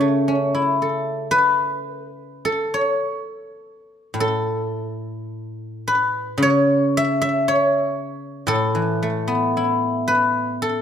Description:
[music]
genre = chinese traditional, Chinese solo plucked strings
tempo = 53-58 BPM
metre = 2/4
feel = rubato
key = A gong mode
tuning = A4 = 443 Hz
[part]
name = guzheng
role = solo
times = 0.0-10.8 s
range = A2 to E5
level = -19 LUFS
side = left 1 dB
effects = slapback echo
[sound]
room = moderate recital hall reverb, RT60 1.8 s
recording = close, detailed microphones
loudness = -18 LUFS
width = side -8 dB against mid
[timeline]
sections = 0.0-10.8 A section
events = none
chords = none

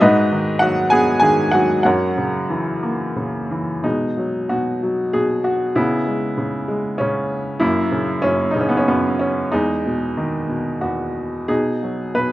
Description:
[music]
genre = classical, lyrical solo piano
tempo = 87-100 BPM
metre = 3/4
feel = rubato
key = B major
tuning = A4 = 439 Hz
[part]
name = bright upright piano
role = solo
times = 0.0-12.3 s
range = E2 to G#5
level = -17 LUFS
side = equal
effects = none
[sound]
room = light reverb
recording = none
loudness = -17 LUFS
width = side -16 dB against mid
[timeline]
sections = 0.0-3.9 A section; 3.9-12.3 B section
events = none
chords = 0.0 G#m7; 1.9 F#7; 3.9 B6; 5.8 C#m7; 7.6 F#7; 9.5 Emaj7; 11.5 B6

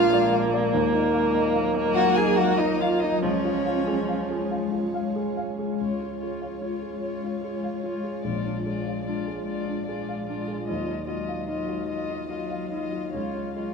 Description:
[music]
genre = neoclassical piano and strings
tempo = 49 BPM (dotted quarters)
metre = 6/8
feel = rubato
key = Db major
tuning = A4 = 440 Hz
[part]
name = dark violin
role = melody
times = 0.0-13.7 s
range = Db5 to Ab5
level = -31 LUFS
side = left 7 dB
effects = none
[part]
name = dark cello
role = second line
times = 0.0-13.7 s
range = Gb3 to Ab4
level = -30 LUFS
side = right 6 dB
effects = none
[part]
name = dark baby grand piano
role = accompaniment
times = 0.0-13.7 s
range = Bb1 to F5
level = -30 LUFS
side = equal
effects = none
[part]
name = dark viola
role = accompaniment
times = 0.0-13.7 s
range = F3 to F4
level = -30 LUFS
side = right 1 dB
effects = none
[part]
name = ethereal airy pad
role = sustained chords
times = 0.0-13.7 s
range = Gb3 to F5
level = -30 LUFS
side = left 2 dB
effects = ensemble chorus, built-in reverb
[sound]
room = light reverb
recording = minimal, uncompressed stereo recording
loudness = -24 LUFS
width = side -5 dB against mid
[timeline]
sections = 0.0-5.8 A section; 5.8-13.7 B section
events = none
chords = 0.0 Bb7; 0.7 Ebmadd9; 3.2 Db; 8.3 Bb7; 10.7 Ebmadd9; 13.1 Db

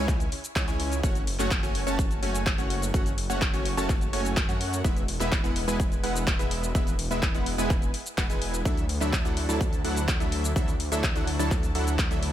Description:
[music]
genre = EDM, festival progressive house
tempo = 126 BPM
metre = 4/4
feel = straight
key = F# minor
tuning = A4 = 440 Hz
[part]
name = supersaw stab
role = riff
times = 0.0-12.3 s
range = F#3 to A5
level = -30 LUFS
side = right 1 dB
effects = sidechain pumping, digital delay
[part]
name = wide detuned saw bass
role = bass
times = 0.0-12.3 s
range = E1 to F#2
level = -30 LUFS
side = equal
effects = chorus, sidechain pumping
[part]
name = big-room dance drum kit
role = drums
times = 0.1-12.3 s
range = handclaps, hi-hat, shaker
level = -32 LUFS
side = left 1 dB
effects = studio ambience
[part]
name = electronic kick drum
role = drums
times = 0.1-12.1 s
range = none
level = -26 LUFS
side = equal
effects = overdrive, studio ambience
[sound]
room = little or no reverb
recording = faint mains hum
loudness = -24 LUFS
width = side -11 dB against mid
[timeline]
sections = 0.0-12.3 A section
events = none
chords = 0.0 C#m; 1.0 F#m; 4.8 E; 8.7 Dadd9

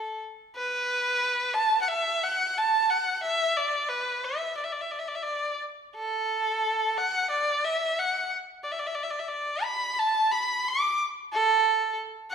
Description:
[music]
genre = chinese traditional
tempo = 89 BPM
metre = 4/4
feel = straight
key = D gong mode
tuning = A4 = 439 Hz
[part]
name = bright erhu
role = solo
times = 0.0-12.3 s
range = A4 to D6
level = -25 LUFS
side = right 1 dB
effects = none
[sound]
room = wet recital hall reverb, RT60 1.5 s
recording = recorded in a church or concert hall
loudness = -24 LUFS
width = side -7 dB against mid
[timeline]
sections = 0.0-12.3 A section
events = none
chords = none

